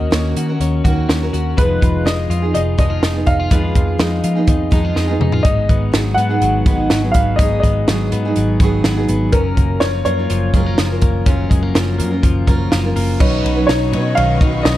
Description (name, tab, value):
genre	jangly indie pop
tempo	124 BPM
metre	4/4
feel	straight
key	unclear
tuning	A4 = 439 Hz
part	warm upright piano	melody	0.0-14.8 s	Bb4 to Gb5	-21 LUFS	equal	none
part	picked steel-string acoustic guitar	accompaniment	0.0-14.8 s	Ab2 to B4	-22 LUFS	right 5 dB	none
part	twelve-string electric guitar	arpeggios	0.0-14.8 s	Gb2 to Cb5	-23 LUFS	left 6 dB	none
part	vintage muted picked electric bass	bass	0.0-14.8 s	F1 to F3	-18 LUFS	equal	none
part	compact cocktail drum kit	drums	0.1-14.8 s	crash cymbal, hi-hat, kick drum, ride cymbal, snare drum, toms	-17 LUFS	equal	none
part	soft electric-piano-like synth keys	accompaniment	13.2-14.8 s	D#4 to C#5	-24 LUFS	equal	chorus
part	rich studio string section	sustained chords	13.2-14.8 s	F#4 to C#6	-29 LUFS	left 3 dB	none
room	studio reverb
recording	none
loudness	-13 LUFS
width	side -14 dB against mid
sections	0.0-13.2 A section; 13.2-14.8 B section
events	drum fill 5.0-5.5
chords	0.0 Ebm7; 1.6 Fm7b5; 5.5 Abm7; 9.3 Gbmaj7; 13.2 Badd9